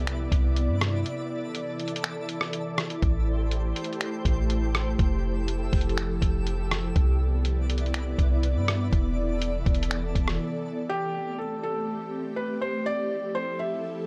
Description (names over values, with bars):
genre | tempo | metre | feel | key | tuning
hip hop, atmospheric cloud-rap | 122 BPM | 4/4 | half-time | A minor | A4 = 439 Hz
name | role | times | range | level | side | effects
ethereal airy pad | sustained chords | 0.0-14.1 s | C3 to D5 | -34 LUFS | equal | ensemble chorus, built-in reverb, sidechain pumping
soft 808-style bass | bass | 0.0-10.4 s | E1 to G2 | -28 LUFS | equal | none
twinkling granular texture | texture | 0.0-10.9 s | A4 to E6 | -44 LUFS | equal | built-in reverb
lo-fi sampler-style drum kit | drums | 0.1-10.4 s | finger snaps, hi-hat, kick drum, rim click | -29 LUFS | equal | none
felt-muted upright piano | melody | 10.9-14.1 s | G4 to E5 | -32 LUFS | equal | analog delay
room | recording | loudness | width
little or no reverb | echo-heavy mix | -27 LUFS | mono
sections
0.0-10.9 A section; 10.9-14.1 B section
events
break 1.1-3.0, 10.4-10.9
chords
0.0 Cmaj9; 1.1 E7sus4; 3.0 Am7; 5.0 Fmaj9; 7.0 Cmaj9; 8.9 E7sus4; 10.9 Am7; 12.9 Fmaj9